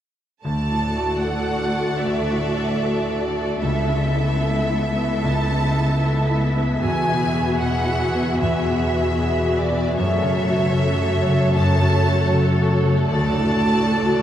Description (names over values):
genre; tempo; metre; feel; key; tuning
cinematic; 76 BPM; 4/4; rubato; unclear; A4 = 440 Hz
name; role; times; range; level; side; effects
warm symphonic violin section; melody; 0.4-14.2 s; D5 to A5; -26 LUFS; right 1 dB; none
clear concert grand piano; accompaniment; 0.4-14.2 s; C#2 to A4; -25 LUFS; equal; none
warm symphonic viola section; accompaniment; 0.4-14.2 s; A3 to F#4; -27 LUFS; left 1 dB; none
concert harp; arpeggios; 0.4-14.2 s; E2 to A4; -24 LUFS; left 1 dB; none
rich studio cello section; bass; 0.4-14.2 s; C#2 to F#2; -24 LUFS; right 1 dB; none
rich symphonic violin section; second line; 0.5-14.2 s; G#4 to E5; -28 LUFS; equal; none
room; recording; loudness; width
wet cathedral reverb, RT60 6.6 s; in a vast, echoing space; -18 LUFS; side -10 dB against mid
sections
0.4-14.2 A section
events
none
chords
0.4 D; 3.6 Aadd9/C#; 6.8 Eadd9; 10.0 F#m7; 13.1 D